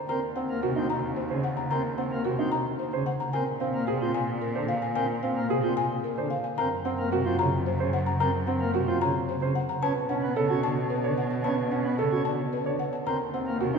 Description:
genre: classical, minimalist pattern music.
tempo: 111 BPM.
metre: 3/4.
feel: straight.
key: Eb dorian.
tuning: A4 = 440 Hz.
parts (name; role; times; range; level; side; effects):
buzzing marimba with soft mallets; melody; 0.0-13.8 s; Ab4 to Bb5; -31 LUFS; left 4 dB; none.
clear baby grand piano; arpeggios; 0.0-13.8 s; C4 to Db5; -30 LUFS; right 4 dB; none.
pipe organ, sparkling flutes; accompaniment; 0.1-13.8 s; C3 to Db4; -30 LUFS; left 1 dB; none.
rich cello; bass; 0.1-13.8 s; Eb2 to B2; -33 LUFS; right 1 dB; none.
room: wet church reverb, RT60 3.3 s.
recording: recorded in a church or concert hall.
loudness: -25 LUFS.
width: side -5 dB against mid.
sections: 0.1-13.8 A section.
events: none.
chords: 0.1 Ebm7; 3.3 Bb7; 6.6 Gb; 9.8 Bm7; 13.1 Ebm.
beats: | 0.10 0.64 1.18 | 1.72 2.26 2.80 | 3.34 3.88 4.42 | 4.96 5.50 6.04 | 6.58 7.12 7.66 | 8.20 8.74 9.28 | 9.82 10.37 10.91 | 11.45 11.99 12.53 | 13.07 13.61.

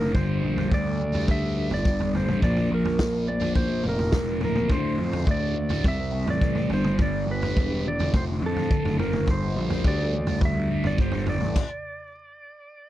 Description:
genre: psychedelic rock.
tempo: 105 BPM.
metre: 4/4.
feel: straight.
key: unclear.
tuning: A4 = 440 Hz.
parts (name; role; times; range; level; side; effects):
clean lap steel guitar; melody; 0.0-12.9 s; A4 to E5; -30 LUFS; right 2 dB; slapback echo.
thick fuzz guitar; riff; 0.0-11.6 s; D2 to C4; -27 LUFS; equal; distortion, phaser.
fuzz picked electric bass; bass; 0.0-11.5 s; D1 to F2; -28 LUFS; equal; overdrive.
vintage drum kit; drums; 0.0-11.7 s; crash cymbal, kick drum, snare drum, toms; -26 LUFS; equal; none.
room: little or no reverb.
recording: dry, close 1970s-style studio recording.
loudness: -22 LUFS.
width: side -13 dB against mid.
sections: 0.0-12.9 A section.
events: stop 11.6-12.9.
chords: 0.1 G5; 2.4 Bb; 4.7 Dm; 5.8 C; 6.7 G; 8.1 Dm/F; 9.3 G5; 11.6 N.C..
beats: | 0.14 0.71 1.28 1.85 | 2.42 2.99 3.56 4.13 | 4.70 5.27 5.84 6.42 | 6.99 7.56 8.13 8.70 | 9.28 9.85 10.42 10.99 | 11.56 12.13 12.70.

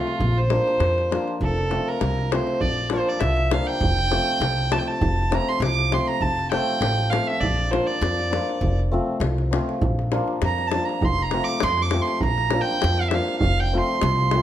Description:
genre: balkan folk, Balkan wedding band.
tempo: 100 BPM.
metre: 2/4.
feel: swing 54% on 16ths.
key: F major.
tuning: A4 = 440 Hz.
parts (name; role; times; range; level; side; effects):
warm fiddle; melody; 0.0-14.4 s; F4 to D6; -24 LUFS; right 3 dB; none.
hammered dulcimer; accompaniment; 0.0-14.4 s; F3 to F4; -27 LUFS; left 2 dB; none.
davul; percussion; 0.1-14.4 s; none; -28 LUFS; left 2 dB; none.
upright bass; bass; 0.2-14.4 s; F1 to F2; -24 LUFS; equal; none.
room: moderate recital hall reverb, RT60 1.4 s.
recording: none.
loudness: -20 LUFS.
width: side -11 dB against mid.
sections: 0.0-14.4 A section.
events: fiddle solo 0.0-14.4.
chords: 0.2 Bb; 1.4 F; 2.6 Bb; 3.8 F; 7.4 Bb; 8.6 F; 9.8 Bb; 11.0 F; 12.2 Bb; 13.4 F.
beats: | 0.21 0.81 | 1.41 2.01 | 2.61 3.21 | 3.81 4.41 | 5.01 5.61 | 6.21 6.81 | 7.41 8.01 | 8.61 9.21 | 9.81 10.41 | 11.02 11.62 | 12.22 12.82 | 13.42 14.03.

